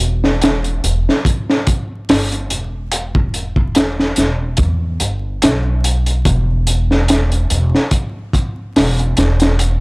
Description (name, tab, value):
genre	trip hop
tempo	72 BPM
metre	4/4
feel	swing 56% on 16ths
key	E minor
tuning	A4 = 440 Hz
part	upright bass	bass	0.0-9.8 s	E1 to E2	-16 LUFS	equal	none
part	crunchy breakbeat drum kit	drums	0.0-9.8 s	hi-hat, kick drum, snare drum	-15 LUFS	equal	none
room	little or no reverb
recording	dry, gritty hardware recording, vinyl crackle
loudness	-13 LUFS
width	side -39 dB against mid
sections	0.0-9.8 A section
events	none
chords	none